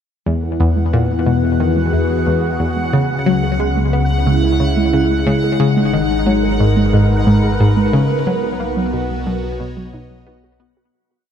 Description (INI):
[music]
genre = ambient, sequencer-driven space music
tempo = 90 BPM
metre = 4/4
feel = straight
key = unclear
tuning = A4 = 439 Hz
[part]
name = phased analog pad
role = sustained chords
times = 0.3-10.9 s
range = C#3 to D#5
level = -18 LUFS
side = equal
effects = phaser, chorus, shimmer reverb
[part]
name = warbly dusty pluck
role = arpeggios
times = 0.3-10.9 s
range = F#3 to G#4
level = -23 LUFS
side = right 2 dB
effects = chorus, auto-pan, ping-pong delay
[part]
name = analog pluck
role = riff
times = 0.3-10.7 s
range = E2 to B3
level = -17 LUFS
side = left 1 dB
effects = chorus, phaser, ping-pong delay
[part]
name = round analog bass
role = bass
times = 0.3-10.9 s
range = G#1 to E2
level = -22 LUFS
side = equal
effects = none
[part]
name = bubbling stepped-filter texture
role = texture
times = 0.5-10.9 s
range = F#5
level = -27 LUFS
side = equal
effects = chorus, built-in reverb, shimmer reverb
[sound]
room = moderate concert hall reverb, RT60 2.3 s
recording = none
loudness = -13 LUFS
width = side -8 dB against mid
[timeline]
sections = 0.3-10.9 A section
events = fade-out 7.4-10.9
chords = 0.3 E; 2.9 C#m7; 5.6 G#madd9; 8.3 B